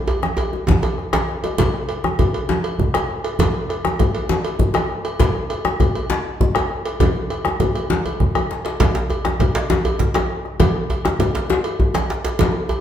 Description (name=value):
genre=west african traditional, West African drum ensemble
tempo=133 BPM (dotted quarters)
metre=12/8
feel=straight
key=none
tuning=none
part: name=cowbell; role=percussion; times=0.1-12.8 s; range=none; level=-26 LUFS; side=right 2 dB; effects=none
part: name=djembe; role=percussion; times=0.1-1.3, 8.8-12.8 s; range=none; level=-23 LUFS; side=right 1 dB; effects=none
part: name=bombo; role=percussion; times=0.2-12.8 s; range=none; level=-22 LUFS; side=equal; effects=none
part: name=congas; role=percussion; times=0.2-12.5 s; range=none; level=-24 LUFS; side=right 3 dB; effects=none
part: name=djembe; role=percussion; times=0.2-12.5 s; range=none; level=-23 LUFS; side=left 4 dB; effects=none
room=wet large studio reverb, RT60 1.4 s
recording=band playing live in one room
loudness=-17 LUFS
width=side -10 dB against mid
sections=0.0-1.6 A section; 1.6-12.8 B section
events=drum fill 0.0-1.6, 8.1-8.8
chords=none